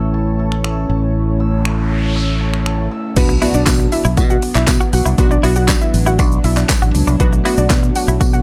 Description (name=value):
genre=dance-pop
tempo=119 BPM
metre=4/4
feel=straight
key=B minor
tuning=A4 = 440 Hz
part: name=funky polysynth comp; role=accompaniment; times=0.0-8.1 s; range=A3 to C#5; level=-25 LUFS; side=equal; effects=chorus, sidechain pumping, low-pass filter
part: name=chorused pulse-width pad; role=sustained chords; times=0.0-8.4 s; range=F#3 to E4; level=-26 LUFS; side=equal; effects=sidechain pumping, low-pass filter
part: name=hammered dulcimer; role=arpeggios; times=0.0-5.6 s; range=A4 to E6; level=-34 LUFS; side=equal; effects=sidechain pumping, low-pass filter, tape echo
part: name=fingered electric bass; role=bass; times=0.0-8.4 s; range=A1 to B2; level=-19 LUFS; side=equal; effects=sidechain pumping
part: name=deep house drum kit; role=drums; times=0.5-8.4 s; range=crash cymbal, finger snaps, handclaps, hi-hat, kick drum, shaker, snare drum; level=-18 LUFS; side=equal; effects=none
part: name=noise sweep and impact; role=sound effects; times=1.5-5.2 s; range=none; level=-30 LUFS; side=equal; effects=none
part: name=soft round pluck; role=melody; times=3.2-8.4 s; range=B3 to F#5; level=-24 LUFS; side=equal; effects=chorus, sidechain pumping
part: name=tambourine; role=percussion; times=3.2-8.3 s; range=none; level=-32 LUFS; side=equal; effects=none
part: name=direct-recorded clean electric guitar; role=riff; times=3.3-8.3 s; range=D4 to F#4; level=-26 LUFS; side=equal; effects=analog chorus
room=digital ambience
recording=dry, gritty hardware recording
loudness=-15 LUFS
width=mono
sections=0.0-3.2 A section; 3.2-8.4 B section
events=filter sweep 0.0-3.2; noise sweep 1.5-3.2; drop 3.2-8.4; impact 3.2-5.2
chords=0.0 A; 3.2 Bm